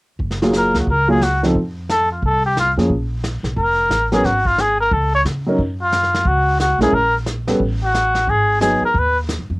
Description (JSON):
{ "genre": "jazz, small-group swing and bop", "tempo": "178 BPM", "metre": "4/4", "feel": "swing 64% on 8ths", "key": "F# major", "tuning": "A4 = 440 Hz", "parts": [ { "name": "upright bass", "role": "bass", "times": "0.2-9.6 s", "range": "E#1 to C#3", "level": "-22 LUFS", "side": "equal", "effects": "none" }, { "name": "vintage brush drum kit", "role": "drums", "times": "0.2-9.6 s", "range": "brushed snare drum, hi-hat, kick drum, snare drum", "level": "-26 LUFS", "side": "equal", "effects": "cassette tape" }, { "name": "warm grand piano", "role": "accompaniment", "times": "0.4-8.8 s", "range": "E#3 to A#4", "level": "-18 LUFS", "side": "equal", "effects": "cassette tape" }, { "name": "trumpet with cup mute", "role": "melody", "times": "0.6-9.2 s", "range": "E#4 to C#5", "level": "-16 LUFS", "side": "equal", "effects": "none" } ], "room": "light reverb", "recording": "home recording on cassette", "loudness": "-15 LUFS", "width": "side -24 dB against mid", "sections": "0.2-5.6 A section; 5.6-9.6 B section", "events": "none", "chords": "0.2 F#maj9; 1.6 F5; 2.9 A#5; 4.2 F#maj7sus2/G#; 4.9 F#m6/C#; 5.6 F#5; 6.9 A#mmaj7; 7.6 F#m/A; 8.3 G#m7", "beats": "| 0.21 0.54 0.88 1.22 | 1.55 1.89 2.23 2.56 | 2.90 3.23 3.57 3.91 | 4.24 4.58 4.92 5.25 | 5.59 5.92 6.26 6.59 | 6.93 7.27 7.60 7.94 | 8.27 8.61 8.95 9.28" }